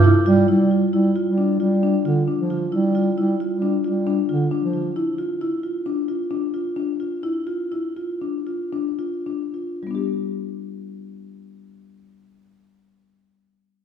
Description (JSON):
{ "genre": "contemporary instrumental, chamber music in an uneven meter", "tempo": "103-135 BPM", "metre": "5/4", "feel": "straight", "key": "G mixolydian", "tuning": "A4 = 440 Hz", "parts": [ { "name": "mellow French horn section", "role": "sustained chords", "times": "0.0-0.5 s", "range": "C3 to E4", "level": "-36 LUFS", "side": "left 2 dB", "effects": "none" }, { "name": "marimba with soft mallets", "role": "arpeggios", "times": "0.0-13.2 s", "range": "G3 to G4", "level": "-23 LUFS", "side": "left 2 dB", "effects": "none" }, { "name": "dark bass clarinet", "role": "bass", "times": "0.3-4.9 s", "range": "D3 to G3", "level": "-19 LUFS", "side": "right 1 dB", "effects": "none" } ], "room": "wet recital hall reverb, RT60 1.6 s", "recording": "recorded in a church or concert hall", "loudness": "-20 LUFS", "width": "side -8 dB against mid", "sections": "0.5-9.8 A section; 9.8-12.7 B section", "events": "slowing down 5.9-9.8", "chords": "0.5 G5; 9.8 G" }